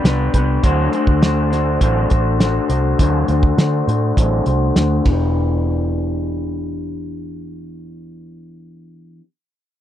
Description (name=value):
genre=indie pop, bedroom pop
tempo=102 BPM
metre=4/4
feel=straight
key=E minor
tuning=A4 = 441 Hz
part: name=electric guitar through a small old amp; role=accompaniment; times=0.0-9.2 s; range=D3 to C5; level=-20 LUFS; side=left 2 dB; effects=wide subtle chorus, vibrato effect, low-pass filter
part: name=vintage muted fingered electric bass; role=bass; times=0.0-9.2 s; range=E1 to D3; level=-19 LUFS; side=right 1 dB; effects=none
part: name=cloth-damped thuddy drum kit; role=drums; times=0.1-5.2 s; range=hi-hat, kick drum, ride cymbal, snare drum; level=-16 LUFS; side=equal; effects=none
room=little or no reverb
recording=dry, close 1970s-style studio recording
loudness=-15 LUFS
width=side -11 dB against mid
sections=0.0-5.3 A section; 5.3-7.7 B section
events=filter sweep on clean electric guitar 0.0-5.3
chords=0.0 Cmaj7sus2; 0.6 D7; 5.1 Em7